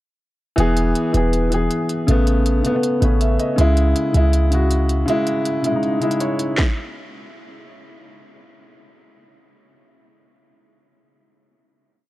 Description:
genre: hip hop, trap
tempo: 160 BPM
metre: 4/4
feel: half-time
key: C# minor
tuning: A4 = 439 Hz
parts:
  - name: dark baby grand piano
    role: accompaniment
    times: 0.6-6.6 s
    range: C#3 to E5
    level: -19 LUFS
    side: left 1 dB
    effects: none
  - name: clean 808-style bass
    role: bass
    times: 0.6-5.0 s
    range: E1 to C#2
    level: -17 LUFS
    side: equal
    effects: none
  - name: trap drum kit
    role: drums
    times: 0.6-6.7 s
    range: handclaps, hi-hat, kick drum, snare drum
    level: -25 LUFS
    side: equal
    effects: none
room: little or no reverb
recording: worn, warbling old tape, cassette tape, warbly pitch drift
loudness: -16 LUFS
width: side -16 dB against mid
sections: 0.6-6.6 breakdown; 6.6-9.6 final hit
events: grand piano fill 2.8-3.6, 6.0-6.6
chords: 0.6 E; 2.1 Aadd9; 3.6 C#m; 6.6 N.C.

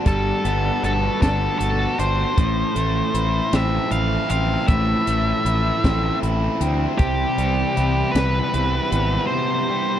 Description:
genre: indie rock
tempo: 52 BPM (dotted quarters)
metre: 6/8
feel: straight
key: unclear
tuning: A4 = 440 Hz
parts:
  - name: lush unison pad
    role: sustained chords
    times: 0.0-10.0 s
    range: C3 to F#5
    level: -32 LUFS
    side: equal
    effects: none
  - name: overdriven electric guitar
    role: riff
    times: 0.0-10.0 s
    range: A2 to F#4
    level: -23 LUFS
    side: equal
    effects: none
  - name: octave-fuzz lead guitar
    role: melody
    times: 0.1-10.0 s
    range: G4 to F5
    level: -24 LUFS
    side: equal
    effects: distortion, slapback echo
  - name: fuzz fingered electric bass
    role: bass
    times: 0.1-9.2 s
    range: G1 to D2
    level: -22 LUFS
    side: equal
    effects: overdrive
  - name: compact cocktail drum kit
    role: drums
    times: 0.1-9.1 s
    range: hi-hat, kick drum, snare drum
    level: -21 LUFS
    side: equal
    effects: none
room: little or no reverb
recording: dry, close 1970s-style studio recording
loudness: -18 LUFS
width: side -10 dB against mid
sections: 0.0-10.0 A section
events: none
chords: 0.0 Gmaj7; 2.4 Fmaj7/A; 7.0 Cmaj7

